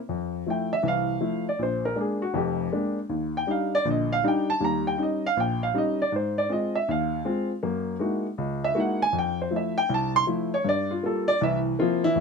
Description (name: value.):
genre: solo jazz.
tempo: 159 BPM.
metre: 4/4.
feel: swing 64% on 8ths.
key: unclear.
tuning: A4 = 440 Hz.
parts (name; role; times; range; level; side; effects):
warm baby grand piano; solo; 0.1-12.2 s; F1 to C6; -23 LUFS; equal; none.
room: light reverb.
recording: close, detailed microphones.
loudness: -23 LUFS.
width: side -5 dB against mid.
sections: 0.1-12.2 A section.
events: grand piano solo 0.1-12.2.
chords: 0.1 Fmaj7; 1.6 Bb7; 3.1 Ebmaj7; 4.6 Eb7; 6.1 Ab6; 7.6 Gb13; 9.1 Fmaj7; 10.6 Gm7; 11.4 C7.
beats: | 0.09 0.46 0.84 1.22 | 1.59 1.97 2.35 2.72 | 3.10 3.48 3.85 4.23 | 4.61 4.98 5.36 5.74 | 6.11 6.49 6.87 7.25 | 7.62 8.00 8.38 8.76 | 9.13 9.51 9.89 10.27 | 10.64 11.02 11.40 11.77 | 12.15.